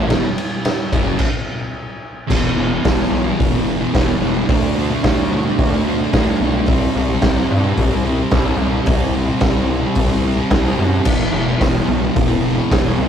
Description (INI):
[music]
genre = garage rock duo or trio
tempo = 110 BPM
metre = 4/4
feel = straight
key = E minor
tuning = A4 = 441 Hz
[part]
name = thick fuzz guitar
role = riff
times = 0.0-13.1 s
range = E2 to D4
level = -19 LUFS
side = equal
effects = distortion
[part]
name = gritty driven synth bass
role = bass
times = 0.0-13.1 s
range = E1 to G2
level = -21 LUFS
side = equal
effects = overdrive
[part]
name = raw garage drum kit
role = drums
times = 0.1-12.8 s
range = crash cymbal, hi-hat, kick drum, ride cymbal, snare drum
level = -18 LUFS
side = equal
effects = none
[sound]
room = light reverb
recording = rough rehearsal-room recording, tube saturation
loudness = -14 LUFS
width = side -8 dB against mid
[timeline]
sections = 0.0-2.3 A section; 2.3-13.1 B section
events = stop 1.2-2.3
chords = 0.0 E5; 4.5 D5; 6.7 C5; 11.1 E5